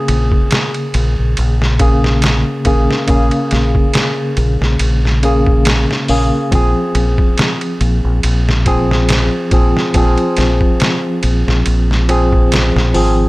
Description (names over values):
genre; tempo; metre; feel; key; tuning
trip hop; 70 BPM; 4/4; swing 55% on 16ths; Bb minor; A4 = 440 Hz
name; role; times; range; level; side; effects
barky tine electric piano; accompaniment; 0.0-13.3 s; Db3 to Ab4; -16 LUFS; equal; overdrive, harmonic tremolo, tape echo
deep dub fingered electric bass; bass; 0.1-13.3 s; Ab1 to Bb1; -14 LUFS; equal; none
trip hop sampler-style drum kit; drums; 0.1-13.2 s; hi-hat, kick drum, ride cymbal, snare drum; -16 LUFS; equal; none
room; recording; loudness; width
digital ambience; none; -11 LUFS; side -20 dB against mid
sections
0.0-13.3 A section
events
none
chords
0.0 Bbm7; 6.5 Fm/Bb